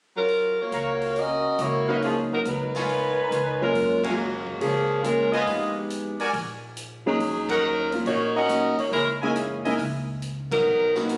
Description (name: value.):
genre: jazz, big band swing.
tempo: 139 BPM.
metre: 4/4.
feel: swing 68% on 8ths.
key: F# major.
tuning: A4 = 440 Hz.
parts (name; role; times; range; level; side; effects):
mellow saxophone section; melody; 0.2-11.2 s; C#3 to D#5; -26 LUFS; equal; none.
swinging big-band drum kit; drums; 0.3-11.2 s; hi-hat, kick drum, ride cymbal, snare drum; -42 LUFS; equal; none.
clear trumpet section; stabs; 0.7-9.7 s; B3 to A#5; -33 LUFS; equal; none.
upright bass; bass; 0.7-11.2 s; F#1 to F#2; -37 LUFS; equal; none.
clear upright piano; accompaniment; 1.9-11.1 s; F#2 to G4; -32 LUFS; equal; none.
room: moderate recital hall reverb, RT60 1.5 s.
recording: recorded on a phone in the room, studio reverb, compression.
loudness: -25 LUFS.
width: mono.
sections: 0.3-3.7 A section; 3.7-11.2 B section.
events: band accent 4.0, 7.4, 10.4.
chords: 0.3 F#maj7; 1.2 F#7; 2.0 C#7; 5.5 Fm7b5; 6.3 F#6/A#; 7.2 D#m7; 8.9 F#13; 10.7 Bmaj7.